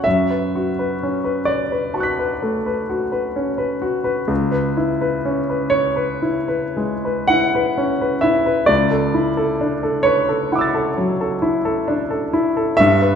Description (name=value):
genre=classical, impressionist solo piano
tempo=36-45 BPM (dotted quarters)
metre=9/8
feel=rubato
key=unclear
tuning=A4 = 440 Hz
part: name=warm grand piano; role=solo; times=0.0-13.2 s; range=C#2 to B6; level=-17 LUFS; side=left 1 dB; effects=none
room=wet recital hall reverb, RT60 1.5 s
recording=heard from further back in the room, nothing above 10.5 kHz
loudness=-17 LUFS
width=side -7 dB against mid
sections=0.0-13.2 A section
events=none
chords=0.1 Bm9/F#; 4.3 C#m7; 8.7 E9sus4/C#